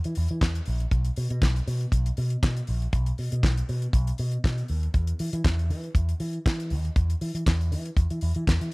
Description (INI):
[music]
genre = disco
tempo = 119 BPM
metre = 4/4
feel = straight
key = unclear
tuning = A4 = 440 Hz
[part]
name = damped 70s drum kit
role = drums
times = 0.0-8.7 s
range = handclaps, hi-hat, kick drum, snare drum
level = -26 LUFS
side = equal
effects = none
[part]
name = picked electric bass with an envelope filter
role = bass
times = 0.1-8.7 s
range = A#1 to E3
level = -26 LUFS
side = equal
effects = none
[sound]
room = little or no reverb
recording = none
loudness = -23 LUFS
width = side -28 dB against mid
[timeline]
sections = 0.0-8.7 A section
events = none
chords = none